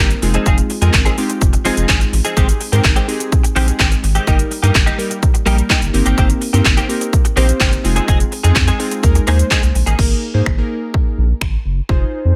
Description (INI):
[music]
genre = dance-pop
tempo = 126 BPM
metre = 4/4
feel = straight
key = Ab major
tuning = A4 = 440 Hz
[part]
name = glassy digital keys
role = accompaniment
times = 0.0-12.4 s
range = G3 to C5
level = -23 LUFS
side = equal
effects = chorus, sidechain pumping
[part]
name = direct-recorded clean electric guitar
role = riff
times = 0.0-10.0 s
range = Eb3 to Ab4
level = -23 LUFS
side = equal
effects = ensemble chorus
[part]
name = round analog bass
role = bass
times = 0.0-12.3 s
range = F1 to Ab2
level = -18 LUFS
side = equal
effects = sidechain pumping
[part]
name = house drum kit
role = drums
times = 0.1-12.0 s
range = crash cymbal, finger snaps, handclaps, hi-hat, kick drum, shaker, snare drum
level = -18 LUFS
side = equal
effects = none
[sound]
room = little or no reverb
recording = none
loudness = -15 LUFS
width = mono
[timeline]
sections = 0.0-10.0 A section; 10.0-12.4 B section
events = drop 0.0-10.0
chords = 0.2 Fm7; 2.4 Abmaj7; 4.3 Eb/G; 5.9 Cm7/G; 7.8 Fm7; 9.0 Ebsus4; 10.0 Absus2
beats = | 0.46 0.94 1.42 1.89 | 2.37 2.84 3.32 3.80 | 4.27 4.75 5.22 5.70 | 6.18 6.65 7.13 7.61 | 8.08 8.56 9.03 9.51 | 9.99 10.46 10.94 11.41 | 11.89